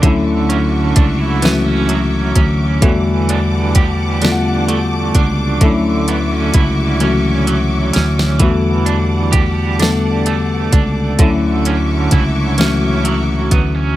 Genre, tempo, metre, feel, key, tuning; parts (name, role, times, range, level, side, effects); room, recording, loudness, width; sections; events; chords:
slow six-eight R&B; 43 BPM (dotted quarters); 6/8; straight; D major; A4 = 440 Hz
electric guitar at the edge of break-up; second line; 0.0-14.0 s; D3 to G4; -21 LUFS; right 6 dB; tremolo, tape echo
mellow tine electric piano; accompaniment; 0.0-14.0 s; D3 to F#5; -17 LUFS; left 3 dB; plate reverb
clear studio string section; sustained chords; 0.0-14.0 s; G3 to D6; -25 LUFS; left 2 dB
mellow fretless electric bass; bass; 0.0-13.9 s; C#2 to E2; -18 LUFS; equal
smooth R&B drum kit; drums; 0.0-13.7 s; hi-hat, kick drum, snare drum; -14 LUFS; equal
light reverb; -12 LUFS; side -14 dB against mid
0.0-14.0 A section
drum fill 7.0-8.4
0.0 Dmaj9; 2.8 Em11; 5.6 Dmaj9; 8.4 Em11; 11.2 Dmaj9